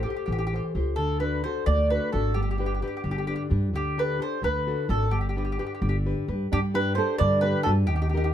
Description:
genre	italian folk, Italian serenade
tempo	87 BPM (dotted quarters)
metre	6/8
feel	straight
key	G major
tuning	A4 = 440 Hz
part	mandolin	melody	0.0-8.3 s	G4 to D5	-28 LUFS	right 2 dB	none
part	nylon-string guitar	accompaniment	0.0-8.3 s	D3 to C5	-30 LUFS	left 4 dB	none
part	upright bass	bass	0.0-8.3 s	G1 to G2	-26 LUFS	equal	none
part	nylon-string guitar	second line	6.5-8.3 s	D4 to B4	-32 LUFS	right 6 dB	none
room	light reverb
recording	none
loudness	-23 LUFS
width	side -10 dB against mid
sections	0.0-6.5 A section; 6.5-8.3 A section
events	none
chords	0.0 Am7; 1.0 D; 2.4 G; 3.7 Dsus4; 4.4 D; 5.1 G

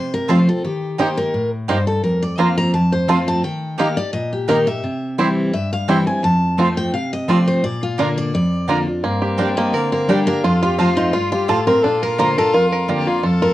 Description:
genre	bluegrass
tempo	171 BPM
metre	4/4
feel	swing 53% on 8ths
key	Bb major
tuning	A4 = 441 Hz
part	picked steel-string acoustic guitar	melody	0.0-13.5 s	Eb4 to Bb5	-21 LUFS	left 2 dB	none
part	picked steel-string acoustic guitar	accompaniment	0.0-13.5 s	F2 to G4	-19 LUFS	equal	none
part	bluegrass banjo	arpeggios	0.3-13.5 s	Bb3 to Bb4	-21 LUFS	right 2 dB	none
part	mandolin	stabs	0.3-13.0 s	Bb3 to Bb5	-22 LUFS	right 4 dB	none
part	clear fiddle	second line	9.0-13.5 s	C4 to A4	-25 LUFS	left 3 dB	none
room	moderate studio ambience, RT60 0.5 s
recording	worn, warbling old tape, cassette tape, warbly pitch drift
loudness	-16 LUFS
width	side -15 dB against mid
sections	0.0-9.0 A section; 9.0-13.5 B section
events	none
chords	0.0 F; 0.6 Eb; 2.0 Fsus4; 2.7 F; 3.4 Eb; 4.8 C; 6.2 F; 7.6 Bb; 9.0 Gm; 10.4 F; 11.8 Bb

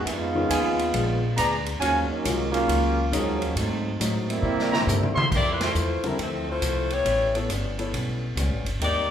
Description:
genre	jazz, big band swing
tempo	137 BPM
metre	4/4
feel	swing 66% on 8ths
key	F major from 5.3 s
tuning	A4 = 439 Hz
part	clear trombone section	second line	0.0-5.1 s	F3 to F4	-26 LUFS	right 2 dB	none
part	hollow-body jazz guitar	accompaniment	0.0-9.1 s	F2 to Ab4	-35 LUFS	left 2 dB	none
part	warm grand piano	accompaniment	0.0-8.3 s	D3 to C#5	-31 LUFS	left 2 dB	none
part	upright bass	bass	0.0-9.1 s	G1 to C3	-28 LUFS	equal	none
part	swinging big-band drum kit	drums	0.1-8.9 s	crash cymbal, hi-hat, kick drum, ride cymbal, snare drum, toms	-30 LUFS	right 1 dB	none
part	warm trumpet section	stabs	0.5-2.0, 4.7-5.7 s	F4 to C6	-27 LUFS	right 1 dB	none
part	warm saxophone section	melody	5.3-9.1 s	F3 to D5	-25 LUFS	left 3 dB	none
room	wet large studio reverb, RT60 1.1 s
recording	band playing live in one room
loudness	-22 LUFS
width	side -9 dB against mid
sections	0.0-5.3 A section; 5.3-9.1 B section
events	trombone section solo 0.0-5.3; drum fill 4.4-5.3; band accent 5.5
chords	0.1 Fm7b5; 0.9 Bb7b9; 1.8 Ebm11; 3.6 Ab7b9; 4.4 C7; 5.3 Fmaj7; 7.1 A9

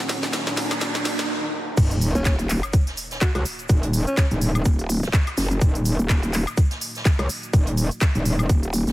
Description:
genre	bass house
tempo	125 BPM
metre	4/4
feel	swing 57% on 16ths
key	Eb minor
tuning	A4 = 435 Hz
part	dark analog pad	sustained chords	0.0-8.9 s	Bb3 to Eb5	-39 LUFS	equal	chorus, sidechain pumping
part	riser, noise sweep and sub drop	sound effects	0.0-3.7 s	none	-28 LUFS	right 1 dB	none
part	granular cloud pad	texture	0.0-1.3 s	Eb4 to Bb5	-36 LUFS	left 1 dB	built-in reverb, sidechain pumping
part	house drum kit	drums	0.1-8.9 s	cabasa, crash cymbal, handclaps, hi-hat, snare drum, woodblock	-28 LUFS	equal	high-pass filter on snare, high-pass filter on hats, high-pass filter on perc, high-pass filter on cymbals
part	swinging big-band drum kit	drums	0.1-8.9 s	hi-hat, shaker, snare drum	-38 LUFS	right 1 dB	none
part	metallic wobble bass	bass	1.8-8.5 s	Eb1 to Db2	-21 LUFS	equal	distortion, chorus, sidechain pumping
part	electronic kick drum	drums	1.8-8.6 s	none	-18 LUFS	equal	none
part	breathy alto saxophone	melody	2.2-4.3 s	Db4 to Gb4	-31 LUFS	equal	dub echo
part	growl bass	bass	2.2-8.9 s	Eb1 to Gb1	-22 LUFS	equal	chorus, tube saturation, sidechain pumping
room	light reverb, small room ambience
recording	heavily compressed radio sound, multiband compression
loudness	-19 LUFS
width	side -16 dB against mid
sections	0.0-1.8 A section; 1.8-8.9 B section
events	build-up 0.0-1.8; drum fill 0.0-1.3; riser 0.0-1.3; noise sweep 0.0-1.8; filter sweep on analog synth pad 0.0-1.8; break 1.3-1.8; drop 1.8-8.9; impact 1.8-3.7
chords	0.0 Ebm

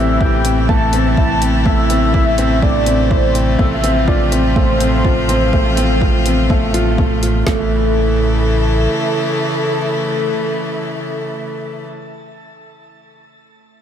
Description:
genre	piano and strings electronica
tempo	124 BPM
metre	4/4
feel	straight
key	A minor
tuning	A4 = 441 Hz
part	warm velvety synth lead	melody	0.0-11.8 s	A4 to A5	-20 LUFS	equal	chorus, tremolo, tape echo, shimmer reverb
part	rich string quartet	sustained chords	0.0-11.8 s	C3 to F4	-22 LUFS	left 1 dB	shimmer reverb
part	felt-muted upright piano	riff	0.0-13.8 s	A3 to F4	-19 LUFS	equal	tape echo, shimmer reverb
part	round analog bass	bass	0.0-8.9 s	A1	-17 LUFS	equal	sidechain pumping
part	deep house drum kit	drums	0.2-7.6 s	kick drum, snare drum	-17 LUFS	equal	none
part	electronic hi-hat	drums	0.4-7.3 s	none	-25 LUFS	left 1 dB	none
room	moderate plate reverb, RT60 2.6 s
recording	dreamy mix soaked in reverb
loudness	-13 LUFS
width	side -9 dB against mid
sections	0.0-7.5 A section; 7.5-11.3 B section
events	drop 0.0-7.5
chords	0.0 Am; 3.6 F/A; 7.5 A

